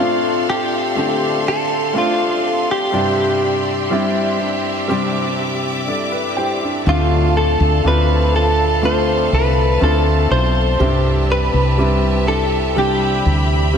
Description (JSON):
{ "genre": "pop", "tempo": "61 BPM", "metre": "4/4", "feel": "straight", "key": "C major", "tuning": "A4 = 440 Hz", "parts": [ { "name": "direct-recorded clean electric guitar", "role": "melody", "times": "0.0-13.8 s", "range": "F4 to C5", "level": "-19 LUFS", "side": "equal", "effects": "lush chorus, ping-pong delay" }, { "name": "clear baby grand piano", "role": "accompaniment", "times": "0.0-13.8 s", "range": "G2 to G5", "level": "-21 LUFS", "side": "right 1 dB", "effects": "none" }, { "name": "bright studio string section", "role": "sustained chords", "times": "0.0-13.8 s", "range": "G4 to D6", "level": "-24 LUFS", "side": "equal", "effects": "none" }, { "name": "fingerpicked steel-string acoustic guitar", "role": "arpeggios", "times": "0.0-13.8 s", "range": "C3 to A4", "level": "-25 LUFS", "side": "left 6 dB", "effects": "ping-pong delay" }, { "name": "woody fretless electric bass", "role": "bass", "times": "6.9-13.8 s", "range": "B1 to D2", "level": "-17 LUFS", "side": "equal", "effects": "analog chorus" } ], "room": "wet lush hall reverb, RT60 3.1 s", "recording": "dreamy mix soaked in reverb", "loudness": "-14 LUFS", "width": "side -7 dB against mid", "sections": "0.0-13.8 A section", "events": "grand piano fill 5.4-6.9", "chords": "0.0 Dm7; 2.9 Cadd9; 6.9 Dm7; 10.8 Cadd9", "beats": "0.96 1.94 | 2.93 3.91 4.89 5.88 | 6.86 7.84 8.83 9.81 | 10.79 11.78 12.76 13.75" }